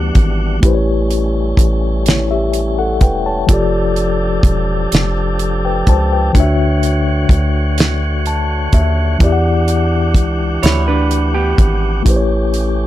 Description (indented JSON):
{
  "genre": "slow six-eight R&B",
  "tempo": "42 BPM (dotted quarters)",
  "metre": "6/8",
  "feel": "straight",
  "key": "E dorian",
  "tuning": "A4 = 440 Hz",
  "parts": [
    { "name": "mellow tine electric piano", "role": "accompaniment", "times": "0.0-12.9 s", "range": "D3 to A5", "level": "-18 LUFS", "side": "left 3 dB", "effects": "medium stereo tremolo" },
    { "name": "tonewheel organ", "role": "sustained chords", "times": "0.0-12.9 s", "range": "D3 to F#5", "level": "-24 LUFS", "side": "equal", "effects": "overdrive, fast rotary speaker" },
    { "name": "rubbery square bass", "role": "bass", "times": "0.0-12.9 s", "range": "E1 to E2", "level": "-16 LUFS", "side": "equal", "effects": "none" },
    { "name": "damped 70s drum kit", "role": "drums", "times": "0.1-12.8 s", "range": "hi-hat, kick drum, snare drum", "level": "-12 LUFS", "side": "equal", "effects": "none" },
    { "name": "semi-hollow electric guitar", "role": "second line", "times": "10.6-12.0 s", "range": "B3 to C#5", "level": "-18 LUFS", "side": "right 5 dB", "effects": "none" }
  ],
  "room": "light reverb",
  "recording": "none",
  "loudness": "-12 LUFS",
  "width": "side -14 dB against mid",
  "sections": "0.0-12.9 A section",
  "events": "tine electric piano fill 7.8-9.2",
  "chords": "0.0 Em9; 0.6 A9; 3.5 F69; 6.3 Dmaj7; 9.2 Em9; 12.1 A9"
}